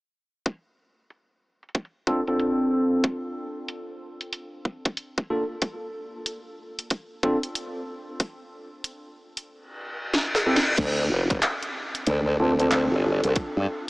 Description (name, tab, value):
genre	glitch hop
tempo	93 BPM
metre	4/4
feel	swing 63% on 16ths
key	D minor pentatonic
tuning	A4 = 441 Hz
part	drum and bass drum kit	drums	0.5-13.5 s	crash cymbal, handclaps, hi-hat, snare drum	-27 LUFS	equal	overdrive, low-pass filter on hats, low-pass filter on snare, low-pass filter on cymbals
part	electronic kick drum	drums	0.5-13.5 s	none	-25 LUFS	equal	overdrive, high-pass filter on kick
part	tine electric piano	stabs	2.1-13.3 s	Bb3 to A4	-27 LUFS	equal	lush chorus, sidechain pumping, low-pass filter, analog delay
part	reverse cymbal	sound effects	9.8-10.8 s	none	-30 LUFS	left 1 dB	none
part	formant-sweep wobble bass	bass	10.8-13.7 s	F1 to G2	-23 LUFS	equal	chorus, tube saturation
room	wet huge ambient reverb, RT60 7.1 s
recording	dreamy mix soaked in reverb, small speaker sound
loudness	-23 LUFS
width	side -23 dB against mid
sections	0.5-10.8 A section; 10.8-13.9 B section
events	filter sweep on tine electric piano 0.5-10.8, 10.8-13.9; reverse cymbal 9.8-10.8; drum fill 10.1-10.8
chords	0.5 Dm7; 3.0 Bbmaj7; 5.6 Csus24; 8.2 Am7; 10.8 Dm7; 13.4 N.C.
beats	| 0.46 1.10 1.75 2.39 | 3.04 3.69 4.33 4.97 | 5.62 6.26 6.91 7.56 | 8.20 8.85 9.49 10.14 | 10.78 11.43 12.07 12.72 | 13.36